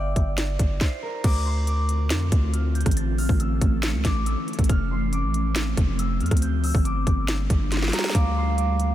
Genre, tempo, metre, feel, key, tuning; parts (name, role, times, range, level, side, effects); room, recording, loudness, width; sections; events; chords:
hip hop, trap; 139 BPM; 4/4; half-time; D minor; A4 = 440 Hz
concert harp; melody; 0.0-8.9 s; Bb4 to A6; -32 LUFS; equal; diffuse ambient delay
long sustained 808-style bass; bass; 0.0-8.9 s; F1 to F2; -24 LUFS; equal
trap drum kit; drums; 0.2-8.9 s; crash cymbal, hi-hat, kick drum, rim click, snare drum; -24 LUFS; equal
ethereal airy pad; sustained chords; 1.8-8.9 s; D3 to F4; -29 LUFS; equal; ensemble chorus, built-in reverb
hollow clarinet-like synth lead; second line; 8.1-8.9 s; F5; -29 LUFS; right 6 dB; chorus, diffuse ambient delay
light reverb; -21 LUFS; side -12 dB against mid
0.0-1.2 A section; 1.2-8.9 B section
stop 0.8-1.2; drum fill 7.7-8.1
0.0 G5; 1.2 Dm7; 3.0 A; 4.7 F; 6.4 Gm; 8.1 Dm7